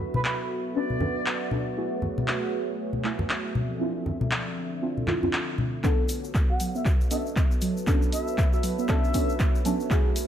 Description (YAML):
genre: deep house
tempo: 118 BPM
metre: 4/4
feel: swing 60% on 16ths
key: B minor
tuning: A4 = 440 Hz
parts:
  - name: hollow soft pad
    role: sustained chords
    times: 0.0-10.3 s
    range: F3 to E5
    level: -36 LUFS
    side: equal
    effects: chorus, vintage 12-bit sampler grit, sidechain pumping
  - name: deep mellow chord stab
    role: stabs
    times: 0.0-10.1 s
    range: A3 to B4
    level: -31 LUFS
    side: equal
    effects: chorus, phaser, sidechain pumping, tape echo
  - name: deep dark ambient pad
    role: texture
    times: 0.0-10.3 s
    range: D4 to C6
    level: -35 LUFS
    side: right 3 dB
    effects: chorus, built-in reverb, sidechain pumping
  - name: bright reedy concert flute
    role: melody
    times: 0.1-1.5, 6.5-9.5 s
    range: B4 to F#5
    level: -34 LUFS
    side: left 1 dB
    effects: low-pass filter, digital delay
  - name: congas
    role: percussion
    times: 0.1-5.7 s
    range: none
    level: -29 LUFS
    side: left 2 dB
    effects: none
  - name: punchy analog drum machine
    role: drums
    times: 0.2-10.3 s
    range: handclaps, hi-hat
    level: -32 LUFS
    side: equal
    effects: none
  - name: soft round pluck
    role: arpeggios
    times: 5.8-10.0 s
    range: F#3 to F#4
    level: -33 LUFS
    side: right 3 dB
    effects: lush chorus, sidechain pumping, tape echo
  - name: electronic kick drum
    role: drums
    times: 5.8-10.0 s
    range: none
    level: -23 LUFS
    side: equal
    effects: none
  - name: tube shaker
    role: percussion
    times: 5.8-10.3 s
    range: none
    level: -40 LUFS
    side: left 4 dB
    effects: none
room: light reverb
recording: none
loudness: -24 LUFS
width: side -10 dB against mid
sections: 0.0-5.8 A section; 5.8-10.3 B section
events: build-up 5.8-10.3; drum fill 5.8-10.3; filter sweep on flute 5.8-10.3; filter sweep on synth arpeggio sound 5.8-10.3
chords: 0.0 Bm9; 1.8 F#m9; 3.6 Dm9; 5.8 Bm9